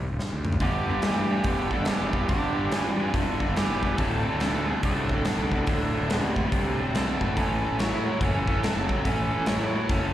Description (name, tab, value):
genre	blues rock power trio and southern rock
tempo	142 BPM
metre	4/4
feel	swing 63% on 8ths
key	D major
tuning	A4 = 442 Hz
part	fuzz fingered electric bass	bass	0.0-10.1 s	D1 to A2	-30 LUFS	equal	overdrive
part	big rock drum kit	drums	0.2-10.0 s	hi-hat, kick drum, snare drum, toms	-29 LUFS	equal	none
part	dark smooth lead guitar	melody	0.6-10.1 s	A3 to E4	-33 LUFS	equal	overdrive
part	biting lead guitar	second line	0.6-10.1 s	G4 to C#5	-33 LUFS	right 3 dB	overdrive, slapback echo
part	cranked stack guitar	riff	0.6-10.1 s	D2 to F#3	-28 LUFS	equal	overdrive
room	light reverb, small room ambience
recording	live gig heard through the venue's PA, recital hall reverb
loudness	-23 LUFS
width	side -12 dB against mid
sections	0.0-10.1 A section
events	drum fill 0.2-0.6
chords	0.0 D5; 0.6 G; 4.0 D5; 7.4 A